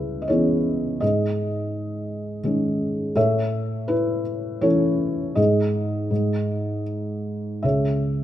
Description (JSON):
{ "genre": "classical, lyrical solo piano", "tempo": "76-86 BPM", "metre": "3/4", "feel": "rubato", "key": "C# minor", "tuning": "A4 = 444 Hz", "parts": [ { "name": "felt-muted upright piano", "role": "solo", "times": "0.0-8.2 s", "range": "C#2 to E5", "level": "-21 LUFS", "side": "equal", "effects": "none" } ], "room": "moderate recital hall reverb, RT60 1.5 s", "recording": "none", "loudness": "-21 LUFS", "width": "side -12 dB against mid", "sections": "0.0-8.2 A section", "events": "none", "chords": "0.0 C#m7; 1.0 G#sus4; 3.2 A; 5.4 N.C.; 7.6 C#m", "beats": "0.30 | 1.02 1.73 2.44 | 3.16 3.88 4.62 | 5.37 6.11 6.87 | 7.64" }